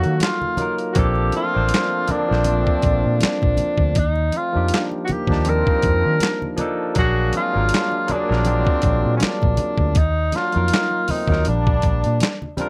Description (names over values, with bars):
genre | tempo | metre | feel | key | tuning
R&B, neo-soul | 80 BPM | 4/4 | swing 55% on 16ths | Bb major | A4 = 442 Hz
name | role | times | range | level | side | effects
breathy tenor saxophone | melody | 0.0-12.6 s | Db4 to Bb4 | -25 LUFS | equal | none
barky tine electric piano | accompaniment | 0.0-12.7 s | F3 to A5 | -27 LUFS | equal | overdrive
clear trombone section | stabs | 0.0-12.4 s | Bb2 to Gb4 | -33 LUFS | equal | none
vintage muted fingered electric bass | bass | 0.0-12.2 s | Ab1 to Eb3 | -23 LUFS | equal | none
boom bap sampler-style drum kit | drums | 0.0-12.7 s | handclaps, hi-hat, kick drum, snare drum | -24 LUFS | equal | none
congas | percussion | 0.2-12.7 s | none | -33 LUFS | equal | none
room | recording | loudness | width
little or no reverb | none | -19 LUFS | mono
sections
0.0-12.7 A section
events
none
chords
0.0 Ebmadd9; 1.0 Bbmaj9; 4.0 Ebmaj9; 7.0 Bb7b13; 10.0 Ebmadd9; 11.5 Bb6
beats
0.21 | 0.96 1.71 2.46 3.21 | 3.96 4.71 5.46 6.21 | 6.96 7.71 8.46 9.21 | 9.96 10.71 11.46 12.21